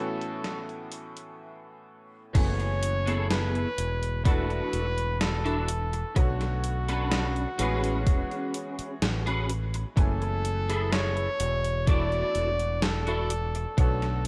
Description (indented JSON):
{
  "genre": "vaporwave",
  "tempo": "63 BPM",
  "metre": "4/4",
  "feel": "straight",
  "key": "A major",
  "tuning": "A4 = 440 Hz",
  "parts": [
    { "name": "breathy flugelhorn", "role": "melody", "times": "0.0-14.2 s", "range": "F#4 to D5", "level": "-35 LUFS", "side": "equal", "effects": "tape echo" },
    { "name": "clear electric grand piano", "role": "accompaniment", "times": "0.0-14.3 s", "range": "A2 to G#5", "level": "-40 LUFS", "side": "equal", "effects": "lush chorus, vintage 12-bit sampler grit, tape echo" },
    { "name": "gated 80s digital drum machine", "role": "drums", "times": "0.2-14.3 s", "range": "crash cymbal, hi-hat, snare drum", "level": "-34 LUFS", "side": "equal", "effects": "gated reverb, gated reverb snare" },
    { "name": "electric guitar at the edge of break-up", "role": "riff", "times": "2.3-14.1 s", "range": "B3 to D5", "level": "-36 LUFS", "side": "equal", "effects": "ensemble chorus, tape echo" },
    { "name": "fingered electric bass", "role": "bass", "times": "2.4-14.3 s", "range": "E1 to B1", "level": "-32 LUFS", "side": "equal", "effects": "none" },
    { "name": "electronic kick drum", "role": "drums", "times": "2.4-14.0 s", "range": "none", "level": "-25 LUFS", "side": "equal", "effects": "none" }
  ],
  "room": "little or no reverb",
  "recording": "rough home demo mix, cassette tape, low-pass filter",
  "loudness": "-28 LUFS",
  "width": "mono",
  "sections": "0.0-2.4 A section; 2.4-14.3 B section",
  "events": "filter sweep on drum 0.0-2.4; break 1.4-2.4",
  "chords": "0.0 A69; 2.4 F#m11; 4.3 E9sus4; 6.2 Bm9; 7.6 Amaj13; 11.9 E9sus4"
}